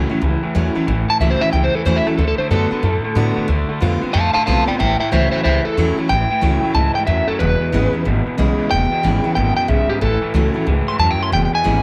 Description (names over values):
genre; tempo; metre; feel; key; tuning
rockabilly; 184 BPM; 4/4; swing 63% on 8ths; A major; A4 = 440 Hz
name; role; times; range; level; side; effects
picked steel-string acoustic guitar; accompaniment; 0.0-11.8 s; E2 to F#4; -24 LUFS; equal; none
electric guitar through a small old amp; riff; 0.0-11.8 s; E2 to B3; -26 LUFS; equal; spring reverb
upright bass; bass; 0.0-11.8 s; E1 to A2; -21 LUFS; equal; none
electric guitar at the edge of break-up; melody; 1.1-11.8 s; G4 to C6; -21 LUFS; equal; tremolo, tape echo
room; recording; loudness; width
light reverb; none; -17 LUFS; mono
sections
0.0-11.8 A section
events
none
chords
0.0 A; 2.2 D; 3.5 Dm7; 4.8 A; 7.4 E; 10.0 A; 11.3 E